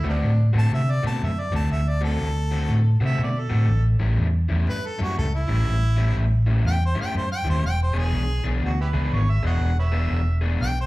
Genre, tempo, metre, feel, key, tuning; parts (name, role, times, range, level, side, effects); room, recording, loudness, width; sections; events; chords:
blues; 121 BPM; 4/4; swing 64% on 8ths; A4 = 441 Hz
warm harmonica; second line; 0.0-3.9, 8.6-10.5 s; G3 to F#5; -32 LUFS; right 4 dB; overdrive, slapback echo
crunchy overdriven guitar; riff; 0.0-10.7 s; A2 to G#4; -29 LUFS; left 3 dB; slapback echo
vintage muted fingered electric bass; bass; 0.0-10.9 s; E1 to C3; -21 LUFS; equal
clear harmonica; melody; 0.6-10.9 s; E4 to A5; -30 LUFS; equal; overdrive, slapback echo
small room ambience; live gig heard through the venue's PA, club ambience; -20 LUFS; side -19 dB against mid
0.0-10.9 A section
0.0 D7; 3.7 A7; 7.6 E7